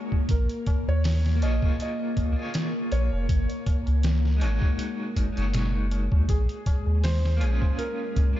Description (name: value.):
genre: trip hop.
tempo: 80 BPM.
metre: 4/4.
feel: swing 55% on 16ths.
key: Bb minor.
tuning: A4 = 441 Hz.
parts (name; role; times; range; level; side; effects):
electric guitar at the edge of break-up; accompaniment; 0.0-8.4 s; Ab3 to Db5; -34 LUFS; right 1 dB; tremolo, vintage 12-bit sampler grit, tape echo.
string machine, cellos; sustained chords; 0.0-8.4 s; Ab3 to Bb4; -33 LUFS; left 1 dB; ensemble chorus.
trip hop sampler-style drum kit; drums; 0.1-8.4 s; hi-hat, kick drum, snare drum; -26 LUFS; equal; vintage 12-bit sampler grit.
tabla; percussion; 0.1-8.4 s; none; -46 LUFS; left 5 dB; tape echo.
felt-muted upright piano; melody; 0.3-8.4 s; Ab4 to Eb5; -36 LUFS; equal; tape echo.
soft dub sub bass; bass; 0.3-8.3 s; F1 to Eb2; -23 LUFS; equal; none.
room: digital ambience.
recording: echo-heavy mix, nothing above 7.6 kHz.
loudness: -23 LUFS.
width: side -13 dB against mid.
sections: 0.0-8.4 A section.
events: none.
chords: 0.3 Bbm7; 3.3 Ab7sus4; 6.3 Bbm7.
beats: | 0.29 1.04 1.79 2.54 | 3.29 4.04 4.79 5.54 | 6.29 7.04 7.79.